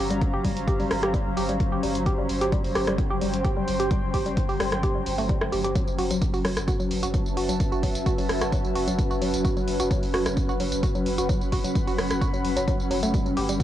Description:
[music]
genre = driving peak-time techno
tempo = 130 BPM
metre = 4/4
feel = straight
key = F# phrygian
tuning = A4 = 440 Hz
[part]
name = woody wave-folded pluck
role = riff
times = 0.0-13.5 s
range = F#3 to G4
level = -29 LUFS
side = right 1 dB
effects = chorus, sidechain pumping, cassette tape, tape echo
[part]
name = warm sub bass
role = bass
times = 0.0-13.6 s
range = F#1 to G1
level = -34 LUFS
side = equal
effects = overdrive, sidechain pumping, low-pass filter
[part]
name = swarming drone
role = drone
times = 0.0-13.6 s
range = F#3 to C#4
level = -31 LUFS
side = left 1 dB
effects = built-in reverb, sidechain pumping, cassette tape
[part]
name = warbly tape-like pad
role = texture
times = 0.0-13.6 s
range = F#4 to B#5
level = -31 LUFS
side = equal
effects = chorus, built-in reverb, sidechain pumping, cassette tape
[part]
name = punchy analog drum machine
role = drums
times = 0.1-13.6 s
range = hi-hat, rim click, tambourine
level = -32 LUFS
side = equal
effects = sidechain pumping on hats, cassette tape, sidechain pumping on perc
[part]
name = electronic kick drum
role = drums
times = 0.2-13.6 s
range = none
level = -26 LUFS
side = equal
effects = cassette tape
[sound]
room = light reverb, digital ambience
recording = home recording on cassette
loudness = -22 LUFS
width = side -12 dB against mid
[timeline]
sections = 0.0-13.6 A section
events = none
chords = 0.0 Gm; 5.8 F#m

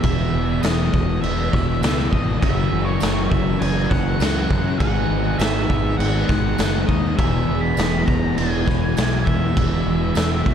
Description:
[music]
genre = rock, shoegaze and dream pop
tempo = 101 BPM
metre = 4/4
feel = straight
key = E lydian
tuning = A4 = 440 Hz
[part]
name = octave-fuzz lead guitar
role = melody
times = 0.0-10.5 s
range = C#5 to B5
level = -28 LUFS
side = equal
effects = distortion, slapback echo
[part]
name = cranked stack guitar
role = riff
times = 0.0-10.5 s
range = E2 to G#3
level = -28 LUFS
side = equal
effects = overdrive
[part]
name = overdriven electric guitar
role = riff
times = 0.0-10.5 s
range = E2 to G#4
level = -26 LUFS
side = right 12 dB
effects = reverse reverb
[part]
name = thick fuzz guitar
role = riff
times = 0.0-10.5 s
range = E2 to G#3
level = -25 LUFS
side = left 10 dB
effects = distortion, lush chorus
[part]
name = growling fingered electric bass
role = bass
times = 0.0-10.5 s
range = E1 to F#2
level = -23 LUFS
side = equal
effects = overdrive
[part]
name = raw garage drum kit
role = drums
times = 0.0-10.5 s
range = crash cymbal, kick drum, snare drum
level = -22 LUFS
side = equal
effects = none
[part]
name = tambourine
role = percussion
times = 0.6-10.3 s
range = none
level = -39 LUFS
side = right 14 dB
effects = none
[sound]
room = studio reverb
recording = dark, warm production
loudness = -17 LUFS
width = side -8 dB against mid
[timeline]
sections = 0.0-10.5 A section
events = none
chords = 0.0 Emaj7; 2.4 F#7; 4.8 G#m7; 7.2 E

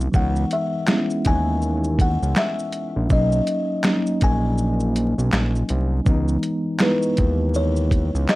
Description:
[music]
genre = lo-fi hip hop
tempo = 81 BPM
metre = 4/4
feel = swing 61% on 16ths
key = C# dorian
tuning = A4 = 440 Hz
[part]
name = mellow tine electric piano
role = accompaniment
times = 0.0-8.4 s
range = E3 to E4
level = -24 LUFS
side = equal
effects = medium stereo tremolo
[part]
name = fat analog bass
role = bass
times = 0.0-8.3 s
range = A#1 to D#2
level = -21 LUFS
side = equal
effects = none
[part]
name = dusty soul sampler-style drum kit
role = drums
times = 0.0-8.4 s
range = handclaps, hi-hat, kick drum, shaker, snare drum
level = -20 LUFS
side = equal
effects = none
[part]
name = buzzing kalimba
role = melody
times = 0.2-8.4 s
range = B4 to G#5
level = -26 LUFS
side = left 2 dB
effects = plate reverb
[sound]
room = moderate studio reverb, RT60 0.6 s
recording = dark, warm production, vinyl crackle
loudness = -18 LUFS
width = side -19 dB against mid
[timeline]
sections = 0.0-8.4 A section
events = none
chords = 0.1 C#m9; 3.1 Bmaj7; 6.1 C#m9

